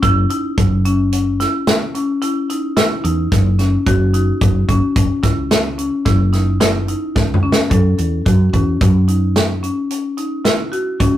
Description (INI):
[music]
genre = progressive instrumental, band music in an uneven meter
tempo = 109 BPM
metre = 7/4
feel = straight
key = F# dorian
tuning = A4 = 442 Hz
[part]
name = marimba with medium mallets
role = arpeggios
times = 0.0-11.1 s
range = C#4 to A4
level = -20 LUFS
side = left 2 dB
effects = ping-pong delay
[part]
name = woody fretless electric bass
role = bass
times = 0.0-11.2 s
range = F#1 to F#2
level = -16 LUFS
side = right 1 dB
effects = none
[part]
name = natural country drum kit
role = drums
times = 0.0-11.1 s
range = hi-hat, kick drum, snare drum, toms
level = -16 LUFS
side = equal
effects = none
[sound]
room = moderate studio reverb, RT60 0.5 s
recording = rough rehearsal-room recording, warm saturation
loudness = -14 LUFS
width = side -12 dB against mid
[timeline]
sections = 0.0-7.7 A section; 7.7-11.2 B section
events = drum fill 7.2-7.7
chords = 0.0 F#5; 7.7 F#7(no3)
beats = | 0.02 0.57 1.12 1.67 2.22 2.77 3.32 | 3.87 4.42 4.96 5.51 6.06 6.61 7.16 | 7.71 8.26 8.81 9.36 9.90 10.45 11.00